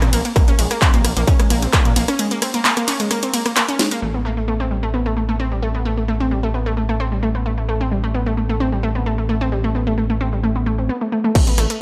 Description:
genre	driving peak-time techno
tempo	131 BPM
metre	4/4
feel	straight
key	A minor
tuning	A4 = 440 Hz
part	unison pluck	riff	0.0-11.8 s	G3 to Db4	-23 LUFS	equal	cassette tape, sidechain pumping, delay
part	gritty driven synth bass	bass	0.0-11.7 s	A1 to Bb2	-24 LUFS	equal	sidechain pumping
part	techno drum kit	drums	0.0-4.0, 11.4-11.8 s	crash cymbal, handclaps, hi-hat, ride cymbal, rim click, snare drum	-22 LUFS	equal	overdrive, sidechain pumping on hats, low-pass filter on hats, studio reverb, sidechain pumping on cymbals, low-pass filter on cymbals, low-pass filter on snare
part	electronic kick drum	drums	0.4-1.8, 11.4 s	none	-18 LUFS	equal	distortion, overdrive, studio reverb
room	light reverb, digital ambience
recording	none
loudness	-19 LUFS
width	mono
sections	0.0-4.0 A section; 4.0-11.4 B section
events	drop 0.0-4.0; break 2.2-4.0; drum fill 3.8; filter sweep on drum 4.0-11.4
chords	none

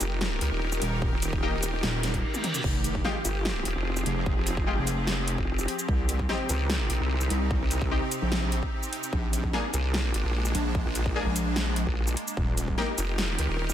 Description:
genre	heavy wobble dubstep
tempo	148 BPM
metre	4/4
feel	half-time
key	F minor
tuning	A4 = 442 Hz
part	evolving wavetable pad	sustained chords	0.0-13.7 s	C3 to Bb4	-32 LUFS	equal	ensemble chorus, built-in reverb, sidechain pumping
part	vowel-sweep wobble bass	bass	0.0-13.7 s	Eb1 to Db2	-28 LUFS	equal	chorus, overdrive
part	big-room dance drum kit	drums	0.0-13.7 s	crash cymbal, hi-hat, shaker, snare drum, toms	-32 LUFS	equal	none
part	wobble bass	bass	0.8-12.8 s	Eb1 to C2	-28 LUFS	equal	chorus, overdrive
part	electronic kick drum	drums	1.0-12.8 s	none	-30 LUFS	equal	none
part	orchestra-hit-like synth stab	stabs	1.4-12.9 s	Ab3 to Ab4	-34 LUFS	left 3 dB	built-in reverb, dub echo
part	reverse cymbal	sound effects	2.1-2.6 s	none	-36 LUFS	right 1 dB	none
room	digital ambience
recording	none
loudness	-25 LUFS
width	side -11 dB against mid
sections	0.0-13.7 A section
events	reverse cymbal 2.1-2.6; drum fill 2.3-2.6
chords	0.0 Eb; 2.6 Fmadd9; 5.9 Cm; 9.1 Bb7; 12.4 Eb

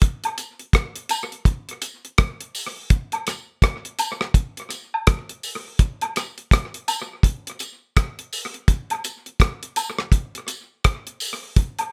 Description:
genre	reggae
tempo	83 BPM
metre	4/4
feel	swing 62% on 16ths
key	none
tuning	none
part	deep reggae drum kit	drums	0.0-11.9 s	hi-hat, kick drum, rim click	-22 LUFS	equal	tape echo
part	woodblock and tambourine	percussion	0.2-11.9 s	none	-29 LUFS	equal	none
room	little or no reverb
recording	none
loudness	-24 LUFS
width	mono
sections	0.0-11.9 A section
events	none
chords	none

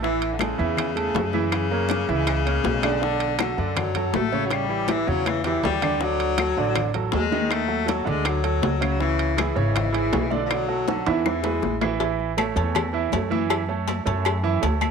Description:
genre	latin, salsa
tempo	160 BPM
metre	4/4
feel	straight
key	A major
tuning	A4 = 440 Hz
part	warm baritone saxophone	second line	0.0-11.8 s	C#3 to A3	-26 LUFS	left 10 dB	none
part	clear grand piano	accompaniment	0.0-14.9 s	C#3 to E5	-26 LUFS	right 10 dB	none
part	upright bass	bass	0.0-14.9 s	G#1 to F#2	-27 LUFS	equal	none
part	bongos and cowbell	percussion	0.0-14.9 s	none	-30 LUFS	left 12 dB	none
part	congas	percussion	0.0-14.9 s	none	-32 LUFS	left 11 dB	none
part	timbales and agogo bells	percussion	0.2-14.9 s	none	-31 LUFS	right 10 dB	none
part	claves	percussion	0.4-14.9 s	none	-33 LUFS	left 12 dB	none
room	light reverb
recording	1960s-style stereo with parts hard left and right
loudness	-21 LUFS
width	side -6 dB against mid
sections	0.0-12.0 A section; 12.0-14.9 B section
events	drum fill 5.3-6.0, 10.9-12.0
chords	0.0 Amaj7; 1.5 F#7; 3.0 Bm9; 4.5 A7; 6.0 D; 7.5 D#dim; 8.3 D; 9.0 C#m7; 10.5 Bm7; 11.3 E; 12.0 A; 13.5 F#m7

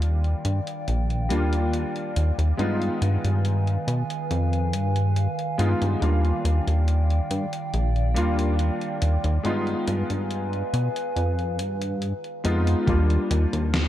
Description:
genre	vaporwave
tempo	70 BPM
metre	4/4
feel	straight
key	Eb major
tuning	A4 = 440 Hz
part	warm electric grand piano	accompaniment	0.0-13.9 s	G3 to F4	-28 LUFS	left 1 dB	ensemble chorus, tape echo
part	warbly tape-like pad	sustained chords	0.0-12.8 s	Eb3 to Ab5	-31 LUFS	right 1 dB	chorus, built-in reverb
part	chorused synth bass	bass	0.0-13.9 s	Bb1 to B2	-22 LUFS	equal	none
part	gated 80s digital drum machine	drums	0.0-13.9 s	hi-hat, snare drum	-33 LUFS	left 1 dB	gated reverb, gated reverb snare, overdrive
part	electronic kick drum	drums	12.9-13.1 s	none	-24 LUFS	equal	overdrive
room	light reverb, digital ambience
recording	dark, warm production, cassette tape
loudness	-22 LUFS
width	side -13 dB against mid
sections	0.0-12.9 A section; 12.9-13.9 B section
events	none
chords	0.0 Ebmaj9; 2.6 G7b9b13; 6.0 Ebmaj9; 9.4 G7b9b13; 12.9 Ebmaj9

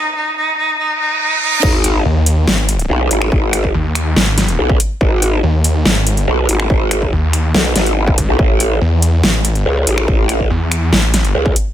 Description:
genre	heavy wobble dubstep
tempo	142 BPM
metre	4/4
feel	half-time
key	G# phrygian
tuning	A4 = 440 Hz
part	rich cello	melody	0.0-1.6 s	D#4	-16 LUFS	right 1 dB	ping-pong delay
part	reverse cymbal and sub drop	sound effects	1.0-3.3 s	none	-21 LUFS	right 4 dB	none
part	growl bass	bass	1.6-11.5 s	G#1 to C#2	-14 LUFS	equal	chorus, overdrive
part	dubstep drum kit	drums	1.6-11.6 s	crash cymbal, finger snaps, hi-hat, snare drum	-17 LUFS	equal	studio reverb
part	electronic kick drum	drums	1.6-11.5 s	none	-16 LUFS	equal	distortion, studio reverb
part	snarling distorted saw bass	bass	2.1-11.3 s	G#1 to E2	-14 LUFS	equal	distortion, overdrive
room	digital ambience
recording	high-pass filter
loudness	-12 LUFS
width	side -11 dB against mid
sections	0.0-1.6 A section; 1.6-11.7 B section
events	break 0.0-1.6; build-up 0.0-1.6; reverse cymbal 1.0-1.6; drop 1.6-11.7; impact 1.6-3.3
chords	0.0 N.C.; 1.6 G#m; 8.4 A5

